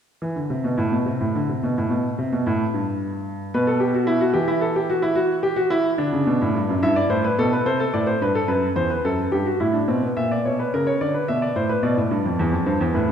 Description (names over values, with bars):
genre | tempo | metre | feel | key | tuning
classical, baroque-style 3-part fugue for grand piano | 72 BPM (dotted quarters) | 6/8 | straight | E minor | A4 = 440 Hz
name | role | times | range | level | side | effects
warm baby grand piano | solo | 0.2-13.1 s | E2 to E5 | -19 LUFS | equal | none
room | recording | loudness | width
wet scoring stage reverb, RT60 1.6 s | heard from further back in the room | -19 LUFS | side -8 dB against mid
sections
0.2-10.2 A section; 10.2-13.1 B section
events
none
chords
0.2 N.C.; 3.5 B5; 4.4 Em; 5.2 Emadd9; 6.0 Bm; 6.8 Em/G; 7.7 Am; 8.5 B5; 9.3 Em/G; 10.2 A#dim; 11.0 Bm; 11.8 G7